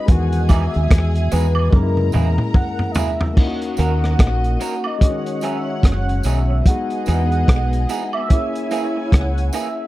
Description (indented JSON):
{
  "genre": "lovers rock reggae",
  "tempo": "73 BPM",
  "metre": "4/4",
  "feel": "swing 60% on 16ths",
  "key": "unclear",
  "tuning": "A4 = 438 Hz",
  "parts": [
    { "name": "warm velvety synth lead", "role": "melody", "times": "0.0-9.9 s", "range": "A#4 to F#5", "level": "-26 LUFS", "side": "equal", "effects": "chorus, tape echo" },
    { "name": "dark studio string section", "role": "second line", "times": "0.0-9.9 s", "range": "A#3 to A#5", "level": "-29 LUFS", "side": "right 1 dB", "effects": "none" },
    { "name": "barky tine electric piano", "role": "accompaniment", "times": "0.0-9.9 s", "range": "D#3 to G#4", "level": "-26 LUFS", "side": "left 5 dB", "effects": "overdrive" },
    { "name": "deep dub fingered electric bass", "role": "bass", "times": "0.1-9.5 s", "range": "F#1 to F#2", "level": "-18 LUFS", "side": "equal", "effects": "none" },
    { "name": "crunchy breakbeat drum kit", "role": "drums", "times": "0.1-9.8 s", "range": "crash cymbal, hi-hat, kick drum, rim click, toms", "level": "-15 LUFS", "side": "equal", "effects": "none" },
    { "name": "electric guitar through a small old amp", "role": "stabs", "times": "0.5-9.7 s", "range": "E3 to A#4", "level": "-28 LUFS", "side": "right 7 dB", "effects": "spring reverb" },
    { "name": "tambourine and woodblock", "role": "percussion", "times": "0.5-9.8 s", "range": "none", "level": "-31 LUFS", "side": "right 5 dB", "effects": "none" }
  ],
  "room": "little or no reverb",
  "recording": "dry, close 1970s-style studio recording",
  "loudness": "-16 LUFS",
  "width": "side -16 dB against mid",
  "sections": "0.0-3.4 A section; 3.4-9.9 B section",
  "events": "soft synth lead solo 0.0-3.4; drum fill 1.7-3.4",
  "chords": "0.1 Emaj7; 1.7 F#9; 3.4 D#m7; 5.0 B69; 6.7 Emaj7; 8.3 C#m6"
}